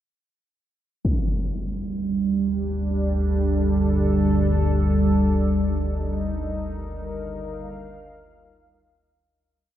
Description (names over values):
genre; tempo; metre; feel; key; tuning
dark ambient drone; free time; none; none; G minor; A4 = 440 Hz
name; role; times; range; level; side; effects
impact; percussion; 1.0-1.3 s; none; -27 LUFS; equal; low-pass filter on sfx
deep dark ambient pad; sustained chords; 1.6-9.3 s; G3 to F5; -24 LUFS; right 2 dB; chorus, built-in reverb
analog drone; drone; 2.1-9.4 s; G1 to D2; -24 LUFS; equal; wide subtle chorus
room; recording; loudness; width
wet huge ambient reverb, RT60 8.4 s; none; -21 LUFS; side -12 dB against mid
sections
1.0-9.3 A section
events
fade-out 5.2-9.3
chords
1.0 G5; 5.2 Eb